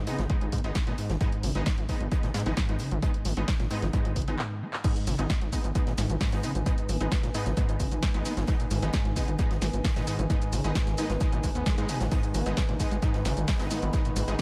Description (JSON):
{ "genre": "driving peak-time techno", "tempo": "132 BPM", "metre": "4/4", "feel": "straight", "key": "G# minor", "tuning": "A4 = 440 Hz", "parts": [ { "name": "overdriven acid bass", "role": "riff", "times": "0.0-14.4 s", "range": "G#2 to B3", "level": "-36 LUFS", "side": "equal", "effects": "sidechain pumping, dub echo" }, { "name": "gritty driven synth bass", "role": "bass", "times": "0.0-14.4 s", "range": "G#1 to G#2", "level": "-33 LUFS", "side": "equal", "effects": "sidechain pumping" }, { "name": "rave stab", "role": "stabs", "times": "0.1-14.4 s", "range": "G#3 to D#4", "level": "-39 LUFS", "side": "equal", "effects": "chorus, built-in reverb, sidechain pumping, dub echo" }, { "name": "gated 80s drum kit", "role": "drums", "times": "0.1-14.4 s", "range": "hi-hat, snare drum", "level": "-50 LUFS", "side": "equal", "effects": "none" }, { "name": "punchy analog drum machine", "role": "drums", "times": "0.1-14.4 s", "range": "crash cymbal, handclaps, hi-hat, shaker, snare drum", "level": "-38 LUFS", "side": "equal", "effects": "sidechain pumping on hats, sidechain pumping on cymbals, sidechain pumping on perc, analog delay" }, { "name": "electronic kick drum", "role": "drums", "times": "0.3-14.4 s", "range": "none", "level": "-30 LUFS", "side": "equal", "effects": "none" }, { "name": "deep dark ambient pad", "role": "drone", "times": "8.3-14.4 s", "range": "G#2 to D#3", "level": "-43 LUFS", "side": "equal", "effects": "none" }, { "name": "warbly tape-like pad", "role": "texture", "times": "5.5-14.4 s", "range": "D#4 to B5", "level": "-42 LUFS", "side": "equal", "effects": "chorus, built-in reverb, sidechain pumping" } ], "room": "light reverb, digital ambience", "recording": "echo-heavy mix", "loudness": "-28 LUFS", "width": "mono", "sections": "0.0-4.8 A section; 4.8-14.4 B section", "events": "break 4.4-4.8; drum fill 4.4-4.8; drop 4.8-14.4", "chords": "0.0 G#m" }